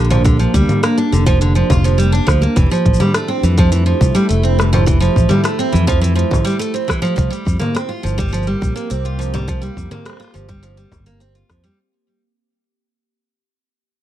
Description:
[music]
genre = folktronica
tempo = 104 BPM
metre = 4/4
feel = straight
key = unclear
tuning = A4 = 440 Hz
[part]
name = warbly tape-like pad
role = sustained chords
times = 0.0-11.8 s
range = A3 to G4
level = -24 LUFS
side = equal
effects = chorus, built-in reverb
[part]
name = picked steel-string acoustic guitar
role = arpeggios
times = 0.0-11.8 s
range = D3 to F4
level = -18 LUFS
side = right 2 dB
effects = digital delay
[part]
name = fingered electric bass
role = bass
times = 0.0-11.7 s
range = F1 to F2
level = -15 LUFS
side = equal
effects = none
[part]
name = organic electronic drum kit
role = drums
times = 0.0-11.8 s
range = congas, hi-hat, rim click, shaker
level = -21 LUFS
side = left 2 dB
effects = none
[part]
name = electronic kick drum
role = drums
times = 0.3-11.6 s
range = none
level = -17 LUFS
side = equal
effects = none
[sound]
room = light reverb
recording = dark, warm production, vinyl crackle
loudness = -13 LUFS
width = side -12 dB against mid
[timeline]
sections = 0.0-11.8 A section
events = fade-out 5.6-11.8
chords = 0.0 Bb6; 2.6 Fmaj9; 7.2 C7sus4

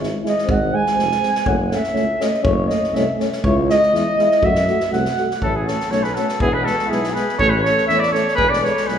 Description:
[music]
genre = balkan folk, Balkan brass band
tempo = 122 BPM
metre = 2/4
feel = straight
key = F# dorian sharp4, A major from 5.4 s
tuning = A4 = 439 Hz
[part]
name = dark euphonium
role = accompaniment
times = 0.0-9.0 s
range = G#3 to A3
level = -25 LUFS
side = right 3 dB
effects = none
[part]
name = mellow euphonium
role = accompaniment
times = 0.0-9.0 s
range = B3 to F#4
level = -25 LUFS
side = left 5 dB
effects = none
[part]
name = mellow tuba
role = bass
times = 0.0-9.0 s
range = E1 to F#2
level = -24 LUFS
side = equal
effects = none
[part]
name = unplugged drum kit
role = percussion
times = 0.0-8.9 s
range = kick drum, snare drum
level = -27 LUFS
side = equal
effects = none
[part]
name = warm flugelhorn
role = second line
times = 0.3-9.0 s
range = E4 to G#5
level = -20 LUFS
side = right 1 dB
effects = none
[part]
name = mellow trumpet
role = melody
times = 5.4-9.0 s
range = G#4 to E5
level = -18 LUFS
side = equal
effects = none
[sound]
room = wet recital hall reverb, RT60 1.7 s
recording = recorded in a church or concert hall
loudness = -16 LUFS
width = side -8 dB against mid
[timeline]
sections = 0.0-5.4 A section; 5.4-9.0 B section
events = flugelhorn solo 0.0-5.4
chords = 0.5 G#; 1.5 F#m; 3.4 C#m; 4.4 F#m; 5.4 A; 6.4 E; 7.4 A; 8.4 E

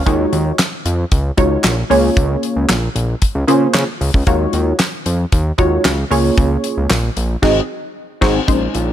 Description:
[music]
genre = early-eighties boogie funk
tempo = 114 BPM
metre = 4/4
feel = straight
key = unclear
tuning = A4 = 440 Hz
[part]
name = funky polysynth comp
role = accompaniment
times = 0.0-8.9 s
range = Ab3 to F5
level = -16 LUFS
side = equal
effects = chorus
[part]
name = fat analog bass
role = bass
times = 0.0-8.9 s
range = Ab1 to Db3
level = -17 LUFS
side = equal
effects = none
[part]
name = damped 70s drum kit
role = drums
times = 0.1-8.9 s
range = crash cymbal, handclaps, hi-hat, kick drum, snare drum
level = -18 LUFS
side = equal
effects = none
[part]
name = group handclap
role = percussion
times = 0.6-7.0 s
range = none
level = -26 LUFS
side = right 4 dB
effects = none
[sound]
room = small room ambience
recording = none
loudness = -13 LUFS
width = side -11 dB against mid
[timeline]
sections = 0.0-8.5 A section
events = band accent 7.4-8.5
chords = 0.1 Ebm11; 1.9 Db6; 4.3 Ebm11; 6.1 Db6; 7.4 Ab7

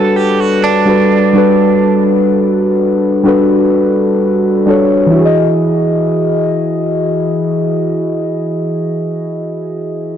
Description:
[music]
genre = R&B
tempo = 63 BPM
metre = 4/4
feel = straight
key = E major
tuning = A4 = 440 Hz
[part]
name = muted felt-like synth keys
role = accompaniment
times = 0.0-10.2 s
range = E3 to D#5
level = -11 LUFS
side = equal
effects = chorus
[part]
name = direct-recorded clean electric guitar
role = arpeggios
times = 0.0-2.0 s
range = D4 to A4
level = -16 LUFS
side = right 6 dB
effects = tape echo
[sound]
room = light reverb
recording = blown-out, overdriven recording, overdrive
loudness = -10 LUFS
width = side -9 dB against mid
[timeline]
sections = 0.0-5.2 A section; 5.2-9.0 B section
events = none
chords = 0.0 Gmaj9; 5.2 Emaj9

